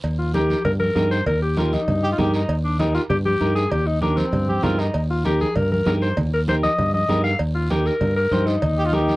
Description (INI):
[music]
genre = latin, cumbia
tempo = 196 BPM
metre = 4/4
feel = straight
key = Eb major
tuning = A4 = 441 Hz
[part]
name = fingered electric bass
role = bass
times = 0.0-9.1 s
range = Eb2 to G2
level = -22 LUFS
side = equal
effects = none
[part]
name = congas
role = percussion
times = 0.0-9.2 s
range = none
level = -28 LUFS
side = right 1 dB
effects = none
[part]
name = cowbell and timbales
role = percussion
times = 0.0-8.8 s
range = none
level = -30 LUFS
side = right 3 dB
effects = none
[part]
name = guiro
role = percussion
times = 0.0-9.2 s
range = none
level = -40 LUFS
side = right 4 dB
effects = none
[part]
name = raspy alto saxophone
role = melody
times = 0.2-9.2 s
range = C4 to F5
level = -22 LUFS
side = left 2 dB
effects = none
[part]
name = clean electric guitar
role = accompaniment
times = 0.3-9.1 s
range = Eb4 to C5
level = -24 LUFS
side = right 1 dB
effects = none
[part]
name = warm trumpet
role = second line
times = 2.0-5.0, 8.8-9.2 s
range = Eb4 to G4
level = -25 LUFS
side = right 1 dB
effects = none
[sound]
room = little or no reverb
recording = worn, warbling old tape, cassette tape, warbly pitch drift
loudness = -18 LUFS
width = side -19 dB against mid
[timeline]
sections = 0.0-9.2 A section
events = none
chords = 0.0 Eb